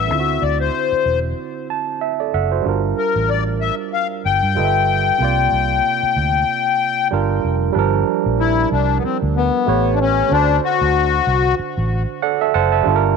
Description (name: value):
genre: R&B, neo-soul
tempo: 94 BPM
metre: 4/4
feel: swing 57% on 16ths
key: G dorian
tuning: A4 = 436 Hz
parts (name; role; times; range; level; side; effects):
- accordion; melody; 0.0-11.6 s; B3 to G5; -18 LUFS; left 10 dB; light tremolo tuning, tape echo
- barky tine electric piano; accompaniment; 0.0-13.2 s; A2 to A5; -20 LUFS; right 14 dB; none
- vintage muted fingered electric bass; bass; 0.0-13.1 s; E1 to G2; -20 LUFS; equal; none
room: moderate plate reverb, RT60 2.4 s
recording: 1960s-style stereo with parts hard left and right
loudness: -15 LUFS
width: side -5 dB against mid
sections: 0.0-7.7 A section; 7.7-13.2 B section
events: tine electric piano fill 1.4-2.6, 11.9-12.9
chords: 0.1 D9; 2.6 Gm7; 4.6 G13; 5.2 C9sus4; 7.1 Gm7; 9.7 A9; 10.3 D7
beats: | 0.09 0.73 1.37 2.00 | 2.64 3.28 3.92 4.56 | 5.20 5.83 6.47 7.11 | 7.75 8.39 9.03 9.66 | 10.30 10.94 11.58 12.22 | 12.86